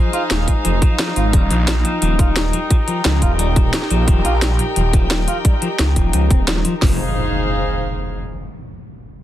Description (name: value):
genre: dark technical drum and bass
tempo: 175 BPM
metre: 4/4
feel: straight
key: F minor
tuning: A4 = 440 Hz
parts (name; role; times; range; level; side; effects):
- clean electric guitar; arpeggios; 0.0-7.0 s; F3 to F4; -24 LUFS; left 2 dB; sidechain pumping, low-pass filter, tape echo
- warm studio string section; texture; 0.0-8.2 s; Eb4 to G5; -23 LUFS; left 1 dB; sidechain pumping
- drum and bass drum kit; drums; 0.1-6.7 s; hi-hat, snare drum; -21 LUFS; equal; none
- phased detuned saw bass; bass; 0.3-7.0 s; Eb1 to Db2; -18 LUFS; equal; phaser, overdrive, sidechain pumping
- drum and bass drum kit; drums; 0.5-6.9 s; hi-hat, kick drum, snare drum; -15 LUFS; equal; none
- impact; sound effects; 6.8-8.2 s; none; -24 LUFS; equal; none
room: little or no reverb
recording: dense, heavily limited modern master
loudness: -14 LUFS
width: side -13 dB against mid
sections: 0.0-6.8 A section; 6.8-8.2 B section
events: filter sweep on clean electric guitar 0.0-6.8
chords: 0.0 Fm7; 1.3 Eb; 6.8 Fm7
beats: 0.31 0.65 0.99 | 1.33 1.68 2.02 2.36 | 2.71 3.05 3.39 3.73 | 4.08 4.42 4.76 5.11 | 5.45 5.79 6.13 6.48 | 6.82 7.16 7.51 7.85